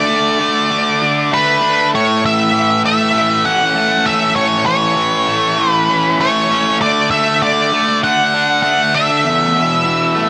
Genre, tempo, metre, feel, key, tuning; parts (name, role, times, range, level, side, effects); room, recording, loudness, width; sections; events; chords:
rock; 98 BPM; 4/4; straight; A major; A4 = 440 Hz
octave-fuzz lead guitar; melody; 0.0-10.3 s; B4 to F#5; -16 LUFS; equal; distortion
cranked stack guitar; riff; 0.0-10.3 s; E2 to D4; -18 LUFS; equal; overdrive
light reverb, digital ambience; faint mains hum; -14 LUFS; mono
0.0-10.3 A section
0.0 D5; 1.9 A; 6.8 D; 9.2 Esus4